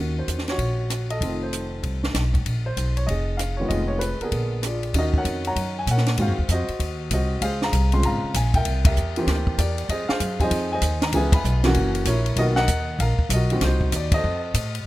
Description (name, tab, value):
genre	jazz piano trio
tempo	194 BPM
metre	4/4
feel	swing 63% on 8ths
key	unclear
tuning	A4 = 440 Hz
part	warm grand piano	melody	0.0-14.7 s	Db3 to C6	-26 LUFS	equal	none
part	upright bass	bass	0.0-14.8 s	F1 to Bb2	-23 LUFS	equal	none
part	compact cocktail drum kit	drums	0.3-14.8 s	hi-hat, kick drum, ride cymbal, rim click, snare drum	-26 LUFS	equal	none
room	small room ambience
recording	rough home demo mix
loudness	-20 LUFS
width	side -16 dB against mid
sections	0.0-4.9 A section; 4.9-14.9 B section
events	band accent 8.8, 11.3, 14.1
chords	0.0 Ebm7; 1.2 F7; 2.5 Bb5; 3.7 Fm7b5; 4.3 Bb7b9; 4.9 Ebm9; 6.2 Ab7 (rootless); 7.4 Dbmaj7; 8.7 C7; 9.9 Fm7; 11.1 Dbm7; 11.8 Gb7; 12.4 Bmaj7; 13.6 Cdim; 14.2 F7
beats	0.28 0.59 0.90 | 1.21 1.52 1.83 2.15 | 2.46 2.77 3.08 3.39 | 3.70 4.01 4.32 4.63 | 4.95 5.25 5.57 5.88 | 6.19 6.50 6.81 7.12 | 7.42 7.74 8.04 8.35 | 8.66 8.97 9.28 9.59 | 9.90 10.21 10.52 10.83 | 11.14 11.45 11.76 12.07 | 12.38 12.69 13.00 13.30 | 13.62 13.92 14.23 14.54